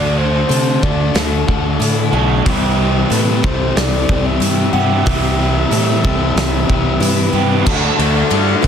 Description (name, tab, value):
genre	rock, shoegaze and dream pop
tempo	92 BPM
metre	4/4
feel	straight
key	D mixolydian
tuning	A4 = 440 Hz
part	breathy flute-like synth lead	melody	0.0-8.7 s	A4 to E5	-23 LUFS	equal	chorus, analog delay
part	picked plugged-in twelve-string acoustic guitar	arpeggios	0.0-8.7 s	E4 to F#5	-27 LUFS	left 11 dB	analog chorus, analog delay
part	cranked stack guitar	riff	0.0-8.7 s	C3 to F#4	-20 LUFS	left 9 dB	overdrive, wide subtle chorus
part	crunchy overdriven guitar	riff	0.0-8.7 s	C3 to D4	-23 LUFS	left 1 dB	none
part	overdriven semi-hollow guitar	riff	0.0-8.7 s	C3 to G4	-21 LUFS	right 9 dB	reverse reverb
part	fuzz fingered electric bass	bass	0.0-8.7 s	B1 to C3	-18 LUFS	equal	overdrive
part	loose indie drum kit	drums	0.5-8.7 s	crash cymbal, hi-hat, kick drum, ride cymbal, snare drum	-19 LUFS	equal	none
room	light reverb, studio ambience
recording	dense, heavily limited modern master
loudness	-12 LUFS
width	side -8 dB against mid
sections	0.0-7.7 A section; 7.7-8.7 B section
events	none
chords	0.0 D; 2.5 C6; 7.7 D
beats	0.51 1.16 1.81 | 2.46 3.11 3.76 4.41 | 5.06 5.71 6.36 7.01 | 7.66 8.31